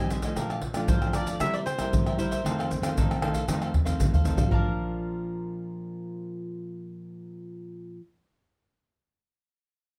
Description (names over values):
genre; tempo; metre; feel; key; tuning
samba and choro; 116 BPM; 4/4; straight; Bb major; A4 = 438 Hz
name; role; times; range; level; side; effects
mandolin; melody; 0.0-7.9 s; Bb4 to E5; -37 LUFS; equal; none
cavaquinho; accompaniment; 0.0-8.0 s; Eb4 to A5; -38 LUFS; equal; none
nylon-string guitar; accompaniment; 0.0-8.0 s; F2 to E4; -35 LUFS; equal; none
tube shaker, pandeiro, surdo and tamborim; percussion; 0.1-4.6 s; none; -28 LUFS; equal; none
room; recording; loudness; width
light reverb; close, detailed microphones; -28 LUFS; mono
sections
0.0-4.5 A section; 4.5-8.7 B section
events
drum fill 3.5-4.5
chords
0.4 Bbmaj7; 1.4 C7; 2.4 F7; 4.5 Bbmaj7